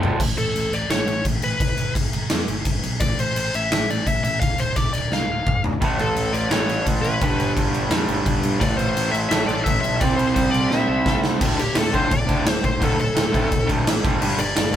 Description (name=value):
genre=punk rock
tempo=171 BPM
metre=4/4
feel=straight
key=unclear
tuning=A4 = 440 Hz
part: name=raw garage guitar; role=riff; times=0.0-0.2, 5.8-14.8 s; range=D2 to C4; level=-22 LUFS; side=right 1 dB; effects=overdrive
part: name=picked electric bass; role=bass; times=0.0-14.8 s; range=D1 to C3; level=-28 LUFS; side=equal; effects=none
part: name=big rock drum kit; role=drums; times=0.0-14.8 s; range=crash cymbal, kick drum, snare drum, toms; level=-22 LUFS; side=equal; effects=none
part: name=smooth overdriven lead guitar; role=melody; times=0.4-14.8 s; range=G4 to F5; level=-24 LUFS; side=left 2 dB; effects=none
room=light reverb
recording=band playing live in one room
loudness=-18 LUFS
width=side -10 dB against mid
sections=0.2-11.4 A section; 11.4-14.8 B section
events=drum fill 0.0, 5.1-5.8, 10.7-11.4; half time 0.2-11.4; lead electric guitar solo 11.4-14.8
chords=0.2 A; 1.6 G; 3.0 Am; 4.4 Dm; 5.8 A; 7.2 G; 8.6 Am; 10.0 C; 11.4 D5; 14.0 G5